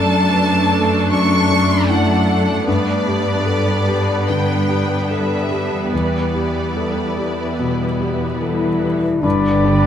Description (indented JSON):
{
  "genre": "cinematic",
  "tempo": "71-77 BPM",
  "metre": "4/4",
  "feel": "rubato",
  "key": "G major",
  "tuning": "A4 = 439 Hz",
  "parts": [
    { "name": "rich symphonic violin section", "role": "melody", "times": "0.0-8.4 s", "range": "D5 to C#6", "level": "-23 LUFS", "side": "equal", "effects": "none" },
    { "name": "warm symphonic violin section", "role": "second line", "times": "0.0-9.9 s", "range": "D4 to B4", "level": "-24 LUFS", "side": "left 2 dB", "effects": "none" },
    { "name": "clear concert grand piano", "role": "accompaniment", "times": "0.0-9.9 s", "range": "E2 to B4", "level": "-21 LUFS", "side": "left 3 dB", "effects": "none" },
    { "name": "clear symphonic viola section", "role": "accompaniment", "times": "0.0-9.9 s", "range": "G3 to G4", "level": "-22 LUFS", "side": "right 2 dB", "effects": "none" },
    { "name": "warm symphonic cello section", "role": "bass", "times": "0.0-9.9 s", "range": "E2 to E3", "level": "-21 LUFS", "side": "right 1 dB", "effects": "none" },
    { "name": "bright clarinet", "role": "second line", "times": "8.4-9.9 s", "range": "G3", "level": "-24 LUFS", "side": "right 1 dB", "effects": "none" },
    { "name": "mellow French horn section", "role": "sustained chords", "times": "8.4-9.9 s", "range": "D4 to E4", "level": "-19 LUFS", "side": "left 4 dB", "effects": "none" },
    { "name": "hollow small flute group", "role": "second line", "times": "9.2-9.9 s", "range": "B5", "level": "-23 LUFS", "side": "left 4 dB", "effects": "none" },
    { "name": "warm oboe", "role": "second line", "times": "9.2-9.9 s", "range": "D5", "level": "-23 LUFS", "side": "equal", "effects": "none" },
    { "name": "warm symphonic double bass section", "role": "bass", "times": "9.2-9.9 s", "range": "G1", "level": "-19 LUFS", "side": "right 4 dB", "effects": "none" }
  ],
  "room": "moderate scoring stage reverb, RT60 1.9 s",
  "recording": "none",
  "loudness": "-15 LUFS",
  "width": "side -9 dB against mid",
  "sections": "0.0-9.2 A section",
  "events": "none",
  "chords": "0.0 D/F#; 2.7 G; 5.9 Em7; 9.2 G",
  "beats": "0.31 1.10 1.89 | 2.67 3.46 4.28 5.09 | 5.92 6.76 7.59 8.42 | 9.24"
}